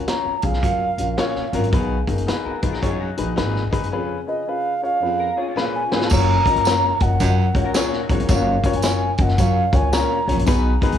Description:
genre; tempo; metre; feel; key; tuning
uptempo 1960s-style soul; 110 BPM; 4/4; swing 64% on 8ths; F# major; A4 = 440 Hz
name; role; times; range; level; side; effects
warm upright piano; accompaniment; 0.0-11.0 s; B2 to D#5; -24 LUFS; left 7 dB; none
upright bass; bass; 0.0-11.0 s; E#1 to F#2; -22 LUFS; left 1 dB; none
mellow alto ocarina; melody; 0.1-10.4 s; D#5 to A#5; -23 LUFS; right 2 dB; tape echo
vintage drum kit; drums; 0.1-11.0 s; crash cymbal, hi-hat, kick drum, snare drum; -23 LUFS; equal; none
breathy baritone saxophone; riff; 0.6-10.8 s; E#2 to B2; -28 LUFS; right 6 dB; none
electric guitar through a small old amp; riff; 2.5-8.7 s; C#4 to A#4; -32 LUFS; left 7 dB; analog chorus
tambourine; percussion; 6.1-10.6 s; none; -32 LUFS; right 5 dB; none
room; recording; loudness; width
light reverb, small room ambience; none; -17 LUFS; side -9 dB against mid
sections
0.0-6.1 A section; 6.1-11.0 B section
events
drum fill 5.6-6.1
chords
0.0 F#maj7; 1.7 B6; 3.9 C#7; 6.1 F#maj7

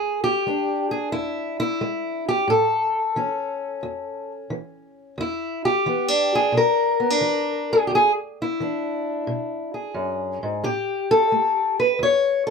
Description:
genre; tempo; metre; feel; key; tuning
acoustic country blues, solo or duo; 88 BPM; 4/4; swing 68% on 8ths; E mixolydian; A4 = 440 Hz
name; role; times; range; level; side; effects
fingerpicked steel-string acoustic guitar; solo; 0.0-12.5 s; E2 to C#5; -20 LUFS; left 1 dB; none
room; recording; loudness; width
light reverb; close, detailed microphones; -20 LUFS; side -5 dB against mid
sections
0.0-12.5 A section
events
none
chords
0.0 E7; 2.5 A; 5.2 E7; 10.6 A5

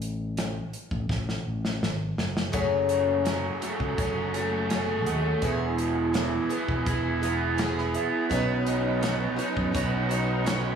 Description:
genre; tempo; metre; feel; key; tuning
folk rock and heartland rock; 83 BPM; 4/4; straight; unclear; A4 = 443 Hz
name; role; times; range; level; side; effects
fingered electric bass; bass; 0.0-10.8 s; E1 to F#2; -30 LUFS; equal; none
natural country drum kit; drums; 0.0-10.6 s; hi-hat, kick drum, snare drum; -32 LUFS; equal; none
dark grand piano; accompaniment; 2.5-9.4 s; G#4 to B5; -36 LUFS; right 10 dB; none
picked plugged-in twelve-string acoustic guitar; accompaniment; 2.5-10.8 s; F#2 to G#4; -30 LUFS; left 6 dB; none
musette accordion; sustained chords; 2.5-10.8 s; A3 to B4; -34 LUFS; right 4 dB; none
raw garage guitar; riff; 2.5-10.8 s; E2 to C#5; -29 LUFS; right 3 dB; overdrive, spring reverb
room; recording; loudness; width
light reverb, studio reverb; none; -24 LUFS; side -7 dB against mid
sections
0.0-10.8 A section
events
drum fill 1.1-2.5; grand piano fill 6.9-8.3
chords
0.0 F#madd9; 5.4 E; 8.3 Badd9

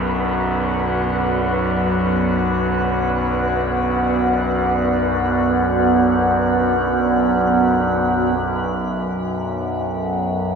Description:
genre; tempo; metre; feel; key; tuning
dark ambient drone; free time; none; none; B minor; A4 = 439 Hz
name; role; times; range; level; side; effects
deep dark ambient pad; sustained chords; 0.0-10.6 s; B3 to F#5; -19 LUFS; right 1 dB; chorus, built-in reverb, shimmer reverb
overtone-sweeping drone; drone; 0.0-10.6 s; B1 to F#2; -21 LUFS; left 1 dB; chorus, built-in reverb
wind-like tuned noise texture; texture; 0.0-8.4 s; B4; -30 LUFS; right 2 dB; built-in reverb, lush chorus, shimmer reverb
room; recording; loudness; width
wet plate reverb, RT60 2.8 s; dreamy mix soaked in reverb; -16 LUFS; side -6 dB against mid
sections
0.0-8.4 A section; 8.4-10.6 A section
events
none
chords
0.0 Bm

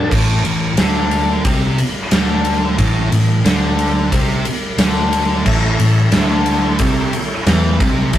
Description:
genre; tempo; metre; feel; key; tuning
blues rock power trio and southern rock; 90 BPM; 4/4; straight; unclear; A4 = 439 Hz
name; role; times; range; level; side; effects
thick fuzz guitar; riff; 0.0-8.2 s; A2 to E3; -19 LUFS; left 1 dB; distortion
modern bright picked electric bass; bass; 0.1-8.2 s; A1 to E2; -18 LUFS; equal; none
huge arena drum kit; drums; 0.1-8.2 s; crash cymbal, kick drum, ride cymbal, snare drum; -17 LUFS; equal; none
overdriven tonewheel organ; sustained chords; 5.4-8.2 s; E4 to G5; -25 LUFS; right 2 dB; slow rotary speaker, chorus vibrato
room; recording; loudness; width
moderate studio ambience, RT60 0.5 s; rough rehearsal-room recording; -13 LUFS; side -12 dB against mid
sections
0.1-8.2 A section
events
none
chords
0.1 A

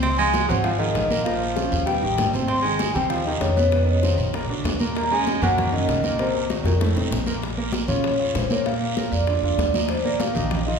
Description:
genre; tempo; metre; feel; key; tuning
Afro-Cuban jazz; 195 BPM; 4/4; straight; Bb minor; A4 = 439 Hz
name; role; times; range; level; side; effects
vibraphone with soft mallets; melody; 0.0-10.8 s; A4 to C6; -24 LUFS; left 2 dB; none
warm baritone saxophone; second line; 0.0-7.2 s; A2 to C4; -28 LUFS; right 4 dB; none
warm concert grand piano; accompaniment; 0.0-10.8 s; A2 to C5; -27 LUFS; right 3 dB; none
upright bass; bass; 0.0-10.8 s; Ab1 to Bb2; -26 LUFS; equal; none
bongos; percussion; 0.0-10.7 s; none; -31 LUFS; left 5 dB; none
congas; percussion; 0.0-10.8 s; none; -30 LUFS; left 1 dB; none
guiro; percussion; 0.0-10.8 s; none; -34 LUFS; right 4 dB; none
room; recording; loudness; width
wet recital hall reverb, RT60 1.5 s; recorded in a church or concert hall; -20 LUFS; side -6 dB against mid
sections
0.0-7.4 A section; 7.4-10.8 B section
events
drum fill 6.5-7.4; vibraphone solo 7.4-10.8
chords
0.0 Dbmaj9; 1.3 Bbm; 1.9 Ebaug; 2.5 Abmaj7; 3.7 Bmaj9#11; 4.3 Bbaug; 5.0 Ebm7; 6.2 Cm7b5; 6.8 F7; 7.4 Bbm; 8.7 Bb; 9.9 Ebsus2

